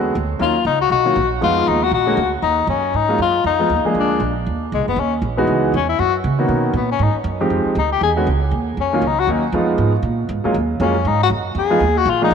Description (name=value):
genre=jazz, small-group swing and bop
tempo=236 BPM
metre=4/4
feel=swing 59% on 8ths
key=Eb minor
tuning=A4 = 441 Hz
part: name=warm concert grand piano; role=accompaniment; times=0.0-12.3 s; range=D3 to Ab4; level=-20 LUFS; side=right 1 dB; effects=none
part: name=upright bass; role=bass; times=0.0-12.3 s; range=Gb1 to Db3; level=-21 LUFS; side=right 3 dB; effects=none
part: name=breathy tenor saxophone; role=melody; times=0.4-12.3 s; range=Ab3 to G#4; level=-19 LUFS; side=left 6 dB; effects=none
room=moderate plate reverb, RT60 3.1 s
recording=none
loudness=-15 LUFS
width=side -7 dB against mid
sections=0.0-4.5 A section; 4.5-12.3 B section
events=tenor saxophone solo 4.5-12.3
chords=0.4 Ebm9; 1.4 Fm7b5; 1.9 Bb7alt; 2.4 Ebm11; 3.5 Fm7b5; 4.0 Bb7; 4.5 Ebm; 5.5 Dbm11; 6.0 Gb; 6.5 Bmaj7; 7.5 Fm9; 8.0 E13; 8.5 Ebm9; 9.5 Fm7b5; 10.0 Bbm7; 10.5 Ebm11; 11.6 Fm7b5